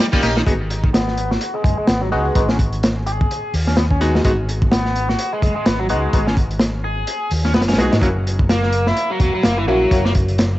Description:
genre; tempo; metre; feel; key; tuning
breakbeat, breaks; 127 BPM; 4/4; swing 57% on 16ths; G# minor; A4 = 444 Hz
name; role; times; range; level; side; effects
biting overdriven guitar; riff; 0.0-10.1 s; D#3 to G#4; -22 LUFS; equal; tube saturation, low-pass filter, cassette tape, analog delay
crunchy breakbeat drum kit; drums; 0.0-10.5 s; hi-hat, kick drum, snare drum; -18 LUFS; equal; cassette tape
band-passed chord stab; stabs; 0.1-10.0 s; G#3 to G4; -22 LUFS; left 1 dB; phaser, cassette tape, analog delay
fingered electric bass; bass; 0.2-10.6 s; E1 to G#2; -21 LUFS; equal; none
room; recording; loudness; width
light reverb, small room ambience; home recording on cassette, vinyl crackle, nothing above 8.0 kHz; -15 LUFS; side -16 dB against mid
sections
0.5-10.6 A section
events
filter sweep on overdriven electric guitar 0.5-10.6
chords
0.5 G#m7; 8.0 F#7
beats
| 0.47 0.94 1.41 1.88 | 2.36 2.83 3.30 3.77 | 4.25 4.72 5.19 5.66 | 6.13 6.61 7.08 7.55 | 8.03 8.50 8.97 9.44 | 9.91 10.39

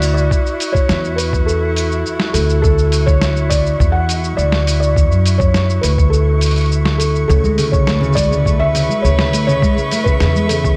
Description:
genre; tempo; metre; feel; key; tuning
folktronica; 103 BPM; 4/4; straight; D major; A4 = 438 Hz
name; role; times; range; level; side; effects
felt-muted upright piano; melody; 0.0-10.5 s; A4 to F#5; -22 LUFS; equal; delay
warm string quartet; sustained chords; 0.0-10.8 s; E4 to E5; -26 LUFS; equal; none
upright bass; bass; 0.0-10.8 s; D2 to F#2; -18 LUFS; equal; none
lo-fi sampler-style drum kit; drums; 0.0-10.8 s; cabasa, hi-hat, snare drum; -24 LUFS; equal; overdrive
flickering grainy texture; texture; 0.0-10.8 s; C#6; -32 LUFS; equal; built-in reverb
electronic kick drum; drums; 0.3-10.8 s; none; -19 LUFS; equal; overdrive
fingerpicked steel-string acoustic guitar; arpeggios; 7.3-10.8 s; C#3 to A3; -21 LUFS; equal; delay
room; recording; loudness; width
light reverb; dark, warm production; -15 LUFS; mono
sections
0.0-10.8 A section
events
none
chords
0.0 Dmaj7; 7.3 Amaj7/D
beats
| 0.30 0.89 1.47 2.05 | 2.63 3.22 3.80 4.38 | 4.96 5.55 6.13 6.71 | 7.29 7.88 8.46 9.04 | 9.62 10.21

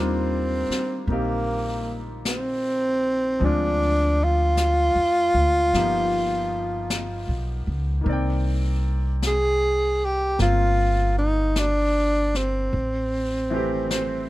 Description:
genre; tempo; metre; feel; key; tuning
jazz ballad; 52 BPM; 4/4; swing 68% on 8ths; unclear; A4 = 440 Hz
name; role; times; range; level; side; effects
breathy tenor saxophone; melody; 0.0-14.3 s; Bb3 to Ab4; -22 LUFS; equal; none
clear baby grand piano; accompaniment; 0.0-14.3 s; Eb3 to G5; -30 LUFS; left 2 dB; none
upright bass; bass; 0.0-14.3 s; G1 to F2; -25 LUFS; equal; none
jazz brush drum kit; drums; 0.7-14.3 s; brushed snare drum, hi-hat, snare drum; -33 LUFS; left 3 dB; none
room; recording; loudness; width
little or no reverb; none; -20 LUFS; side -17 dB against mid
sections
0.0-14.3 A section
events
none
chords
0.0 Ebmaj9; 3.4 Dm7b5; 5.7 G7alt; 8.1 Cm9; 12.7 Am7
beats
1.08 2.25 | 3.42 4.58 5.74 6.90 | 8.06 9.22 10.38 11.55 | 12.72 13.89

